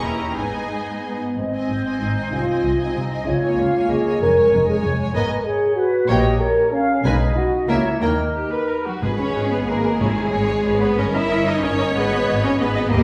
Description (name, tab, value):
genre	classical, dramatic, fast romantic movement for symphony orchestra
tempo	188 BPM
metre	3/4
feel	rubato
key	Ab major, G# minor from 5.1 s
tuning	A4 = 440 Hz
part	clear symphonic violin section	melody	0.0-13.0 s	E4 to A#5	-33 LUFS	equal	none
part	rich symphonic violin section	second line	0.0-13.0 s	F#4 to E5	-31 LUFS	equal	none
part	rich symphonic viola section	accompaniment	0.0-13.0 s	Ab3 to D#5	-30 LUFS	equal	none
part	rich studio cello section	bass	0.0-13.0 s	D#2 to E4	-27 LUFS	equal	none
part	rich symphonic double bass section	bass	0.0-13.0 s	F1 to D#2	-27 LUFS	equal	none
part	mellow French horn section	sustained chords	1.0-13.0 s	B3 to D#5	-24 LUFS	equal	none
part	mellow small flute group	second line	1.4-8.8 s	A#4 to F5	-29 LUFS	equal	none
part	timpani	percussion	9.0-10.5 s	G#2	-30 LUFS	equal	none
room	wet recital hall reverb, RT60 1.4 s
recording	recorded in a church or concert hall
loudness	-20 LUFS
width	mono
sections	0.0-1.4 A section; 1.4-9.0 B section; 9.0-13.0 A section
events	none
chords	0.0 D#7b9; 0.4 G#m; 1.4 Ab; 2.3 Ab/C; 3.3 Db6; 4.2 Db/F; 5.1 G#m; 6.1 Gdim/Bb; 7.0 G#m/B; 7.7 A#dim/C#; 8.0 D#; 9.0 G#m; 10.0 C#m/G#; 11.0 D#7/G; 12.0 G#m